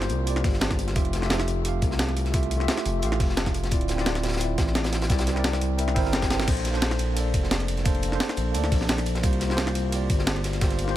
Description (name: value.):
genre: liquid drum and bass.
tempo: 174 BPM.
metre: 4/4.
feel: straight.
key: unclear.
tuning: A4 = 440 Hz.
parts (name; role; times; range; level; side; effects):
bright tine electric piano; accompaniment; 0.0-11.0 s; A3 to G5; -29 LUFS; equal; medium stereo tremolo, ping-pong delay.
smooth gliding synth bass; bass; 0.0-11.0 s; D1 to D2; -27 LUFS; equal; none.
breakbeat sampler-style drum kit; drums; 0.0-10.9 s; crash cymbal, hi-hat, ride cymbal, snare drum; -29 LUFS; equal; none.
crunchy breakbeat drum kit; drums; 0.0-10.9 s; hi-hat, snare drum; -34 LUFS; equal; high-pass filter on hats, high-pass filter on snare, high-pass filter on room.
electronic kick drum; drums; 0.4-10.7 s; none; -26 LUFS; equal; none.
room: little or no reverb.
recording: none.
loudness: -22 LUFS.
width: side -13 dB against mid.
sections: 0.0-6.5 A section; 6.5-11.0 A section.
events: drop 0.0-6.5, 6.5-11.0; drum fill 6.2.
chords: 0.0 C7sus4; 1.0 Fmaj9; 3.7 Dm9; 5.1 C9; 6.5 Bbmaj9; 9.2 C7sus4.